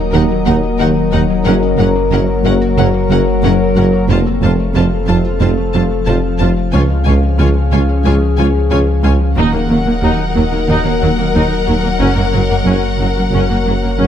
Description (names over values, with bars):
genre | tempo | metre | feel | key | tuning
cinematic, hybrid orchestral and electronic film score | 91 BPM | 4/4 | straight | Eb minor | A4 = 440 Hz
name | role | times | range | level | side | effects
glassy FM pad | sustained chords | 0.0-14.1 s | F3 to F5 | -20 LUFS | left 3 dB | ensemble chorus, built-in reverb
warm French horn section | sustained chords | 0.0-14.1 s | F3 to Bb4 | -20 LUFS | left 5 dB | none
glassy wavetable pluck | arpeggios | 0.0-14.1 s | Db3 to Gb4 | -24 LUFS | left 2 dB | none
soft dub sub bass | bass | 0.0-14.1 s | Eb1 to Db2 | -18 LUFS | equal | none
warm symphonic violin section | melody | 0.1-14.1 s | Gb5 to A5 | -24 LUFS | left 5 dB | none
warm symphonic violin section | second line | 0.1-14.1 s | Bb4 to Db5 | -26 LUFS | left 3 dB | none
rich symphonic viola section | accompaniment | 0.1-14.1 s | Gb3 to F4 | -23 LUFS | equal | none
clear symphonic double bass section | bass | 0.1-14.1 s | F1 to Eb2 | -19 LUFS | right 3 dB | none
mellow tuba | bass | 0.1-14.1 s | F1 to Eb2 | -20 LUFS | right 4 dB | none
warm symphonic cello section | bass | 0.1-14.1 s | Db2 to Gb2 | -20 LUFS | right 2 dB | none
room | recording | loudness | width
light reverb | close, detailed microphones | -11 LUFS | side -9 dB against mid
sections
0.0-14.1 A section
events
none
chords
0.0 Ebm; 1.5 Gb; 4.1 F; 6.7 Db; 9.4 Ebm; 12.0 Gb